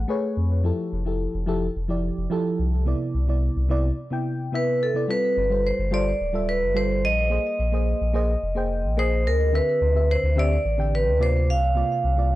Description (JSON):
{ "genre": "sunset chillout", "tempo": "108 BPM", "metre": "4/4", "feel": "straight", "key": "unclear", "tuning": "A4 = 438 Hz", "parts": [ { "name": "mellow FM electric piano", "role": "accompaniment", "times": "0.0-12.4 s", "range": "C3 to G5", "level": "-27 LUFS", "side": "moving between left 4 dB and right 4 dB", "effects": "chorus, auto-pan, tape echo" }, { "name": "warm sub bass", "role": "bass", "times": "0.0-12.4 s", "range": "D1 to F2", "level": "-23 LUFS", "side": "equal", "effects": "none" }, { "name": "vibraphone with medium hard mallets", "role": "melody", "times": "4.6-12.4 s", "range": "A4 to F5", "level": "-23 LUFS", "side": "right 1 dB", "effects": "tape echo" } ], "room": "small room ambience", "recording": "dry, gritty hardware recording, transformer saturation, cassette tape", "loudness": "-21 LUFS", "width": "side -16 dB against mid", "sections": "0.0-5.1 A section; 5.1-12.4 B section", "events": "break 4.0-5.1", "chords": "0.0 Amaj9; 0.6 Fmaj9; 2.9 Cmaj9; 5.1 G9sus4; 7.3 Bb9sus4; 9.5 D9sus4; 11.5 C9sus4", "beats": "0.09 | 0.65 1.20 1.76 2.31 | 2.87 3.42 3.98 4.54 | 5.09 5.65 6.20 6.76 | 7.31 7.87 8.43 8.98 | 9.54 10.09 10.65 11.20 | 11.76 12.31" }